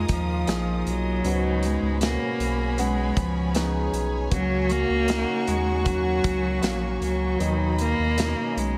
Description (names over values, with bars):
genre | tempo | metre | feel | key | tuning
pop ballad | 78 BPM | 4/4 | straight | F# major | A4 = 441 Hz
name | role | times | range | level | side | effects
warm cello | melody | 0.0-8.8 s | E#3 to A#3 | -29 LUFS | equal | none
mellow French horn section | second line | 0.0-8.8 s | C#4 to G#4 | -33 LUFS | equal | none
warm concert grand piano | accompaniment | 0.0-8.8 s | G#2 to F#5 | -33 LUFS | equal | none
warm studio string section | sustained chords | 0.0-8.8 s | A#3 to D#6 | -38 LUFS | equal | none
warm sub bass | bass | 0.0-8.8 s | A#1 to D#2 | -30 LUFS | equal | none
modern studio drum kit | drums | 0.1-8.8 s | hi-hat, kick drum, snare drum | -31 LUFS | equal | none
room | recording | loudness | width
light reverb, small room ambience | none | -24 LUFS | mono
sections
0.0-8.8 A section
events
none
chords
0.0 D#sus2; 1.2 C#7sus4; 4.3 F#/C#; 7.4 Bmaj7/D#